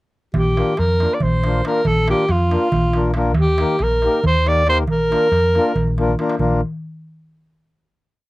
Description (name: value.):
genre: balkan folk, Balkan wedding band.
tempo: 278 BPM (eighths).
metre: 7/8.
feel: straight.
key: Bb major.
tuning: A4 = 439 Hz.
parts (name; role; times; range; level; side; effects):
clear alto saxophone; melody; 0.3-6.0 s; F4 to D5; -18 LUFS; right 1 dB; none.
hollow-body short-scale fingered electric bass; bass; 0.3-6.6 s; Bb1 to F2; -20 LUFS; equal; none.
darbuka; percussion; 0.3-6.6 s; none; -23 LUFS; equal; none.
mellow accordion; accompaniment; 0.6-6.6 s; Bb3 to Bb4; -21 LUFS; left 3 dB; none.
room: light reverb.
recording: dry, close 1970s-style studio recording.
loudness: -15 LUFS.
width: side -19 dB against mid.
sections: 0.3-6.4 A section; 6.4-7.9 final chord.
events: drum fill 6.1-6.4.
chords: 0.3 Bb; 3.4 Eb; 4.9 Bb.